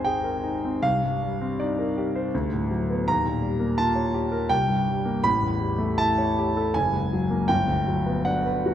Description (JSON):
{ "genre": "classical, impressionist solo piano", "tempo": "81 BPM", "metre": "3/4", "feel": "rubato", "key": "unclear", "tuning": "A4 = 440 Hz", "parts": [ { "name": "warm concert grand piano", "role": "solo", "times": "0.0-8.7 s", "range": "F#1 to B5", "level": "-22 LUFS", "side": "equal", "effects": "none" } ], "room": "wet concert hall reverb, RT60 1.9 s", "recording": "none", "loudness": "-22 LUFS", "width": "side -10 dB against mid", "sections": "0.0-8.7 A section", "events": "none", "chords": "0.0 G#add9; 0.8 Cm7; 2.3 D6; 3.1 D#9; 4.5 C5; 5.2 A9; 6.7 F#add9; 7.5 Gmaj7" }